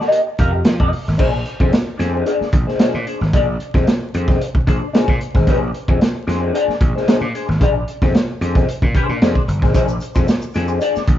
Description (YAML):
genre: funk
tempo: 112 BPM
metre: 4/4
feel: straight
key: Bb mixolydian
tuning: A4 = 440 Hz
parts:
  - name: electric guitar through a small old amp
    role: accompaniment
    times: 0.0-11.1 s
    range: D4 to F5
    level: -20 LUFS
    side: left 3 dB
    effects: wah
  - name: crunchy breakbeat drum kit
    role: drums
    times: 0.0-11.2 s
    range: crash cymbal, hi-hat, kick drum, snare drum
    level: -16 LUFS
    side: equal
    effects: none
  - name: gritty slap bass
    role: bass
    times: 0.4-11.2 s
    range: G1 to F3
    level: -21 LUFS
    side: equal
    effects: overdrive
  - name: tube shaker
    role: percussion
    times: 9.7-11.1 s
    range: none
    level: -42 LUFS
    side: left 1 dB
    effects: none
room: light reverb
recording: band playing live in one room, vinyl crackle, nothing above 7.6 kHz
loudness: -14 LUFS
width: side -12 dB against mid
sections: 0.0-1.2 A section; 1.2-11.2 B section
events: none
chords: 0.0 F9sus4; 1.2 Bb9